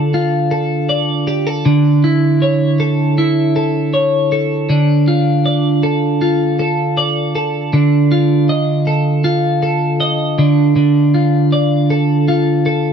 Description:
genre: pop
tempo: 79 BPM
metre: 4/4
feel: straight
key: D harmonic minor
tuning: A4 = 440 Hz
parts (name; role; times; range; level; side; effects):
- twelve-string electric guitar; solo; 0.0-12.9 s; D3 to Eb5; -12 LUFS; right 1 dB; wide subtle chorus
room: light reverb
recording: dark, warm production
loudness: -12 LUFS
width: side -7 dB against mid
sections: 0.0-12.9 A section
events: none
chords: 0.0 Dm; 1.7 A/D; 4.7 Dm; 7.7 F7/D; 10.4 Dm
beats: 0.14 0.90 | 1.66 2.41 3.17 3.93 | 4.69 5.45 6.21 6.97 | 7.73 8.49 9.25 10.01 | 10.77 11.53 12.29

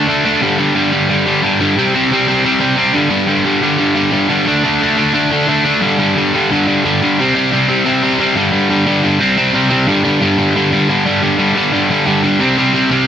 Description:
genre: punk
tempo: 177 BPM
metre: 4/4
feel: straight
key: unclear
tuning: A4 = 439 Hz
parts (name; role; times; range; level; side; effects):
- distorted electric guitar; solo; 0.0-13.1 s; G2 to D4; -11 LUFS; equal; distortion
room: light reverb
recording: nothing above 7.7 kHz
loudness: -11 LUFS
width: side -9 dB against mid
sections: 0.0-9.9 A section; 9.9-13.1 B section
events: none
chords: 0.4 G5; 1.8 C5; 3.0 G5; 4.5 D5; 5.8 G5; 7.2 C5; 8.4 G5; 9.2 C5; 9.9 G5; 12.4 C5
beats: 0.08 | 0.41 0.75 1.09 1.43 | 1.77 2.11 2.45 2.79 | 3.12 3.46 3.80 4.14 | 4.48 4.82 5.16 5.49 | 5.83 6.17 6.51 6.85 | 7.19 7.52 7.86 8.20 | 8.54 8.87 9.21 9.55 | 9.89 10.22 10.56 10.90 | 11.23 11.57 11.91 12.24 | 12.58 12.92

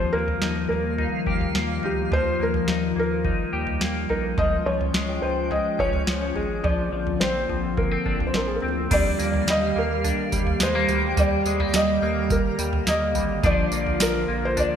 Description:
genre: dream pop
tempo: 106 BPM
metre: 4/4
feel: straight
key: Eb major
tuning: A4 = 440 Hz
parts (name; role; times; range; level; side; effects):
- felt-muted upright piano; melody; 0.0-14.8 s; G4 to Eb5; -26 LUFS; equal; digital delay
- warbly tape-like pad; sustained chords; 0.0-14.8 s; D3 to G4; -29 LUFS; equal; chorus, built-in reverb
- semi-hollow electric guitar; arpeggios; 0.0-14.8 s; F3 to G4; -27 LUFS; left 4 dB; analog chorus, digital delay
- round analog bass; bass; 0.0-14.7 s; Ab1 to Eb2; -30 LUFS; equal; none
- booming analog drum machine; drums; 0.3-14.7 s; crash cymbal, kick drum, snare drum, tambourine, toms; -26 LUFS; right 1 dB; overdrive, gated reverb
- twinkling granular texture; texture; 0.9-12.4 s; F5 to Bb5; -35 LUFS; left 1 dB; built-in reverb, analog chorus, digital delay
room: moderate lush hall reverb, RT60 2.0 s, digital ambience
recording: bright 1980s-style digital production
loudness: -21 LUFS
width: side -8 dB against mid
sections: 0.0-8.9 A section; 8.9-14.8 B section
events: none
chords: 0.0 Ebadd9; 4.4 Db; 6.6 Bbadd9; 8.9 Ebmaj7; 13.4 Bb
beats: 0.42 0.98 1.55 | 2.12 2.68 3.25 3.81 | 4.38 4.95 5.51 6.08 | 6.64 7.21 7.78 8.34 | 8.91 9.47 10.04 10.61 | 11.17 11.74 12.31 12.87 | 13.44 14.00 14.57

